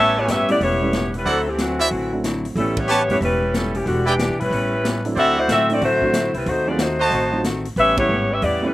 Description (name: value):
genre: jazz, big band swing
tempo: 184 BPM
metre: 4/4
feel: swing 63% on 8ths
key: unclear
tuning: A4 = 440 Hz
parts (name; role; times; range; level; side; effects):
- dark saxophone section; melody; 0.0-8.7 s; D3 to E5; -19 LUFS; left 1 dB; none
- archtop guitar, miked and amplified; accompaniment; 0.0-8.6 s; A2 to G4; -28 LUFS; left 2 dB; slapback echo
- dark baby grand piano; accompaniment; 0.0-8.7 s; F#3 to G4; -26 LUFS; right 2 dB; none
- brilliant trumpet section; stabs; 0.0-7.4 s; E4 to A5; -21 LUFS; right 2 dB; none
- upright bass; bass; 0.0-8.7 s; E1 to A2; -26 LUFS; right 1 dB; none
- swinging big-band drum kit; drums; 0.3-8.5 s; hi-hat, kick drum, ride cymbal, snare drum; -28 LUFS; left 1 dB; none
room: little or no reverb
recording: recorded outdoors, with no room sound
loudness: -17 LUFS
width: side -16 dB against mid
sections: 0.0-8.7 A section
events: band accent 2.7, 7.9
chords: 0.0 A9; 1.3 D9; 2.6 A9; 3.9 Em7; 4.5 A9; 5.2 D9; 6.5 D#dim7; 7.8 A9